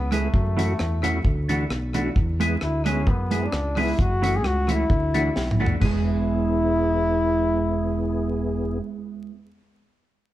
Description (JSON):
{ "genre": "ska", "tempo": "131 BPM", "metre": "4/4", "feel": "swing 54% on 8ths", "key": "E mixolydian", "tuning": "A4 = 440 Hz", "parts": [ { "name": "clear trombone", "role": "melody", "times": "0.0-8.8 s", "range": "A3 to G#4", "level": "-26 LUFS", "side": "left 2 dB", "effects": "none" }, { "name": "fingered electric bass", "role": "bass", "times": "0.0-8.8 s", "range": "E1 to F#2", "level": "-26 LUFS", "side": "equal", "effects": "none" }, { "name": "mellow electric guitar", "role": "accompaniment", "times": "0.1-9.4 s", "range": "E3 to G#4", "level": "-28 LUFS", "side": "right 5 dB", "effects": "none" }, { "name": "percussive tonewheel organ", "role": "stabs", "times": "0.1-8.8 s", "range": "A3 to G#4", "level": "-30 LUFS", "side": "left 2 dB", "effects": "chorus vibrato, slow rotary speaker" }, { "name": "deep reggae drum kit", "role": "drums", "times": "0.1-5.9 s", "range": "hi-hat, kick drum, rim click, snare drum, splash cymbal, toms", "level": "-24 LUFS", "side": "equal", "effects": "none" } ], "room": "moderate large studio reverb, RT60 1.4 s", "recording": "band playing live in one room, vinyl crackle", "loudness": "-20 LUFS", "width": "side -14 dB against mid", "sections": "0.0-5.8 A section; 5.8-9.5 B section", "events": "drum fill 5.4-5.8", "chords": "0.3 F#m7; 1.2 Dadd9; 2.2 E; 4.0 F#m7; 4.9 Dadd9; 5.8 E", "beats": "| 0.33 0.79 1.25 1.70 | 2.16 2.62 3.07 3.53 | 3.99 4.44 4.90 5.36 | 5.82 6.27 6.73 7.19 | 7.64 8.10 8.56 9.02" }